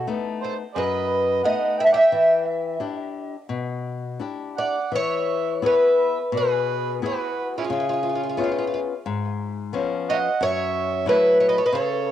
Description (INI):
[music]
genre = fado-style ballad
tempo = 88 BPM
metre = 4/4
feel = rubato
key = E minor, E major from 4.9 s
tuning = A4 = 439 Hz
[part]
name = picked twelve-string acoustic guitar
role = melody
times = 0.0-12.1 s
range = F4 to F#5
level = -21 LUFS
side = equal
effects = cassette tape, analog delay
[part]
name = overdriven harmonica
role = second line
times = 0.0-12.1 s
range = C#4 to A5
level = -28 LUFS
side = right 8 dB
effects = none
[part]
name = flamenco guitar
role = accompaniment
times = 0.0-12.1 s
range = F#2 to G#4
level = -26 LUFS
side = left 6 dB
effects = none
[sound]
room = moderate spring reverb, RT60 1.8 s, studio ambience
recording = home recording on cassette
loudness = -20 LUFS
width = side -11 dB against mid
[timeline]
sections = 0.0-4.9 A section; 4.9-12.1 B section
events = none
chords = 0.0 B7; 2.1 Em7; 4.9 E; 7.7 C#7; 10.4 F#m7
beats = 0.09 0.76 1.44 | 2.12 2.80 3.49 4.20 | 4.92 5.63 6.32 7.02 | 7.70 8.38 9.07 9.74 | 10.41 11.08 11.74